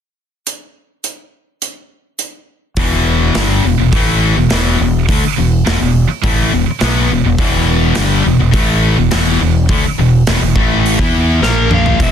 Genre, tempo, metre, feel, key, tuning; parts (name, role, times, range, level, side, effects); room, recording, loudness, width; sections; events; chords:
hard rock; 104 BPM; 4/4; straight; A4 = 435 Hz
big rock drum kit; drums; 0.5-12.1 s; hi-hat, kick drum, snare drum, toms; -18 LUFS; equal
distorted electric guitar; riff; 2.8-12.1 s; E2 to E4; -16 LUFS; left 11 dB; overdrive
scooped high-gain guitar; riff; 2.8-12.1 s; E2 to E4; -17 LUFS; right 10 dB; distortion
growling fingered electric bass; bass; 2.8-12.1 s; E1 to E2; -16 LUFS; equal; overdrive
sludgy distorted guitar; riff; 7.4-12.0 s; E2 to E4; -19 LUFS; right 1 dB; overdrive
smooth overdriven lead guitar; melody; 11.4-12.1 s; A#4 to E#5; -17 LUFS; left 3 dB
little or no reverb; dense, heavily limited modern master, lossy compression artefacts; -10 LUFS; side -8 dB against mid
0.5-2.8 A section; 2.8-12.0 B section
drum fill 11.4-12.0
0.5 N.C.; 2.8 E5; 11.4 A#5